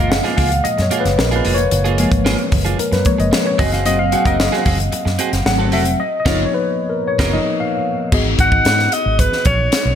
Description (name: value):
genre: polished 1980s jazz-funk pop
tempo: 112 BPM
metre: 4/4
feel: straight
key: unclear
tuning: A4 = 445 Hz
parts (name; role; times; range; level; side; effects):
- tine electric piano; accompaniment; 0.0-9.9 s; E#3 to F#5; -18 LUFS; left 2 dB; overdrive, analog chorus
- electric guitar at the edge of break-up; riff; 0.0-7.4 s; A#3 to A#4; -23 LUFS; right 7 dB; analog chorus
- vintage muted fingered electric bass; bass; 0.0-9.9 s; E#1 to G#2; -19 LUFS; equal; none
- crisp fusion drum kit; drums; 0.1-9.8 s; crash cymbal, hi-hat, kick drum, snare drum; -19 LUFS; equal; gated reverb
- breathy alto saxophone; melody; 8.4-9.9 s; B4 to F#5; -16 LUFS; equal; none
room: light reverb, small room ambience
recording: none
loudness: -14 LUFS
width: side -9 dB against mid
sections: 0.0-8.1 A section; 8.1-9.9 B section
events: tine electric piano solo 0.0-8.1; band accent 6.0-8.1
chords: 0.0 F#maj9; 3.6 G#7/F#; 5.5 G#7b9; 6.0 Bmaj9#11/F#; 8.1 G#m7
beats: 0.11 0.65 1.18 | 1.72 2.25 2.79 3.32 | 3.86 4.39 4.93 5.46 | 5.99 6.53 7.06 7.59 | 8.12 8.65 9.19 9.72